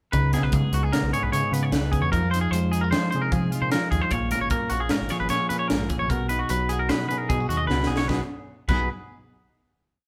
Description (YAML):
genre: math rock and midwest emo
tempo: 151 BPM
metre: 5/4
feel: straight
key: B lydian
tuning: A4 = 440 Hz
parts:
  - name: clean electric guitar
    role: accompaniment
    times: 0.1-8.9 s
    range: G#2 to G#4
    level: -29 LUFS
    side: equal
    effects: spring reverb
  - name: twangy electric guitar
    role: arpeggios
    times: 0.1-8.9 s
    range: F4 to D#5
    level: -29 LUFS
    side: equal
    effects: none
  - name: deep dub picked electric bass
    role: bass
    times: 0.1-8.9 s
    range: G#1 to F3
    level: -30 LUFS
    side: equal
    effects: none
  - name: crisp fusion drum kit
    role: drums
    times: 0.1-8.8 s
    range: crash cymbal, hi-hat, kick drum, snare drum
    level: -30 LUFS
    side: equal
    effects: none
room: light reverb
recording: band playing live in one room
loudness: -24 LUFS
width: mono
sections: 0.1-8.1 A section; 8.1-10.1 final chord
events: drum fill 7.7-8.1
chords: 0.1 C#sus2; 2.1 Fm7; 4.1 A#m7; 6.1 B6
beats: | 0.14 0.54 0.94 1.33 1.73 | 2.13 2.53 2.92 3.32 3.72 | 4.11 4.51 4.91 5.30 5.70 | 6.10 6.49 6.89 7.29 7.69 | 8.08 8.48 8.88